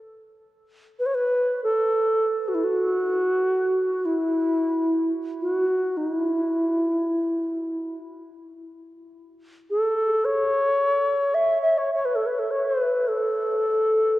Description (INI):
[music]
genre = world meditative, free-time meditation music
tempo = free time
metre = none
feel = none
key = A major pentatonic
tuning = A4 = 440 Hz
[part]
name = bright reedy xiao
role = solo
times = 1.0-14.2 s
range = E4 to E5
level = -21 LUFS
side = equal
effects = diffuse ambient delay
[sound]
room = wet cathedral reverb, RT60 4.8 s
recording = worn, warbling old tape, cassette tape, warbly pitch drift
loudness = -21 LUFS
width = side -16 dB against mid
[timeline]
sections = 0.0-14.2 A section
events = none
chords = none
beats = free time